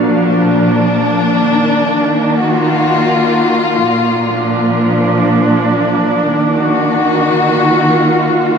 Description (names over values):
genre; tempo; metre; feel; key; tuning
ambient; 74 BPM; 3/4; straight; Eb harmonic minor; A4 = 439 Hz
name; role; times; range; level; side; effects
pedal steel guitar; melody; 0.0-1.0 s; D4; -19 LUFS; right 1 dB; diffuse ambient delay
rich chamber string section; sustained chords; 0.0-8.6 s; Bb2 to Gb4; -11 LUFS; equal; none
room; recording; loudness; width
wet huge ambient reverb, RT60 7.5 s; dark, warm production; -10 LUFS; side -6 dB against mid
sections
0.0-1.4 A section; 1.4-8.6 B section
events
none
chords
0.0 Bb; 1.4 Ebmadd9; 3.9 Bb; 6.3 Ebmadd9